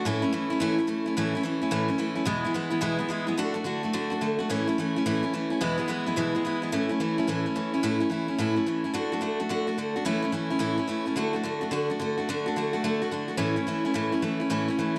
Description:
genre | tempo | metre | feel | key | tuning
rock | 216 BPM | 4/4 | swing 64% on 8ths | A major | A4 = 440 Hz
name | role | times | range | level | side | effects
picked steel-string acoustic guitar | solo | 0.0-15.0 s | E2 to F#4 | -28 LUFS | equal | slapback echo
room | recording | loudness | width
light reverb, studio ambience | none | -28 LUFS | mono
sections
0.0-6.7 A section; 6.7-15.0 B section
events
none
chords
0.0 A; 2.3 E; 3.4 D; 4.5 A; 5.6 E; 6.7 A; 8.9 D; 10.1 A; 11.2 D; 13.4 A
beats
| 0.05 0.33 0.60 0.88 | 1.16 1.44 1.72 2.00 | 2.27 2.55 2.83 3.11 | 3.39 3.66 3.94 4.22 | 4.50 4.78 5.05 5.33 | 5.61 5.89 6.17 6.44 | 6.72 7.00 7.28 7.56 | 7.83 8.11 8.39 8.67 | 8.95 9.23 9.51 9.78 | 10.06 10.34 10.62 10.90 | 11.18 11.45 11.73 12.01 | 12.29 12.57 12.85 13.12 | 13.40 13.68 13.96 14.24 | 14.52 14.80

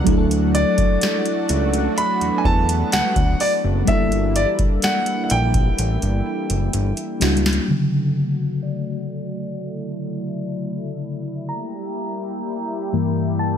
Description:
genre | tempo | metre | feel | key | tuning
contemporary R&B | 63 BPM | 4/4 | straight | D major | A4 = 440 Hz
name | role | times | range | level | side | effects
mellow FM electric piano | accompaniment | 0.0-13.6 s | G2 to Bb5 | -23 LUFS | left 1 dB | chorus, phaser, low-pass filter
lush unison pad | sustained chords | 0.0-13.6 s | E3 to G4 | -28 LUFS | equal | chorus, sidechain pumping, low-pass filter
fat analog bass | bass | 0.0-7.6 s | F#1 to E2 | -21 LUFS | equal | none
glassy wavetable pluck | texture | 0.0-7.6 s | D4 to D6 | -40 LUFS | right 1 dB | none
booming analog drum machine | drums | 0.1-7.7 s | hi-hat, kick drum, snare drum | -22 LUFS | equal | none
clear grand piano | melody | 0.5-7.2 s | D5 to B5 | -22 LUFS | right 1 dB | tape echo
room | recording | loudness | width
digital ambience | none | -18 LUFS | side -8 dB against mid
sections
0.0-7.7 A section; 7.7-13.6 B section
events
drum fill 5.8-7.7; FM electric piano solo 7.7-13.6; filter sweep 7.7-13.6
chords
0.1 Dmaj7; 3.9 Gm6; 7.7 Dmaj7; 11.5 Gm6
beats
| 0.07 1.02 1.97 2.92 | 3.88 4.83 5.78 6.73 | 7.69 8.64 9.59 10.54 | 11.49 12.45 13.40

